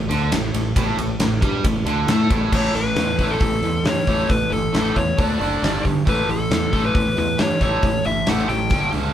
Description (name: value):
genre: hard rock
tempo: 136 BPM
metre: 4/4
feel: straight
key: A mixolydian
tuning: A4 = 440 Hz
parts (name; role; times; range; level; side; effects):
- overdriven semi-hollow guitar; riff; 0.0-9.1 s; G2 to D4; -26 LUFS; left 4 dB; none
- tight distorted guitar; riff; 0.0-9.1 s; G2 to D4; -24 LUFS; right 5 dB; distortion
- modern bright fingered electric bass; bass; 0.0-9.1 s; F#1 to A2; -25 LUFS; equal; none
- big rock drum kit; drums; 0.1-9.0 s; crash cymbal, hi-hat, kick drum, ride cymbal, snare drum; -22 LUFS; equal; none
- dark smooth lead guitar; melody; 2.6-8.9 s; A4 to G5; -23 LUFS; left 3 dB; overdrive
room: light reverb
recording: band playing live in one room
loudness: -17 LUFS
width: side -10 dB against mid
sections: 0.0-2.5 A section; 2.5-9.1 B section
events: none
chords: 0.0 A7sus4; 2.5 A; 5.2 D5; 5.6 G5; 6.1 A; 8.7 G5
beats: 0.32 | 0.77 1.21 1.65 2.09 | 2.53 2.97 3.41 3.86 | 4.30 4.74 5.18 5.62 | 6.07 6.51 6.95 7.39 | 7.83 8.27 8.71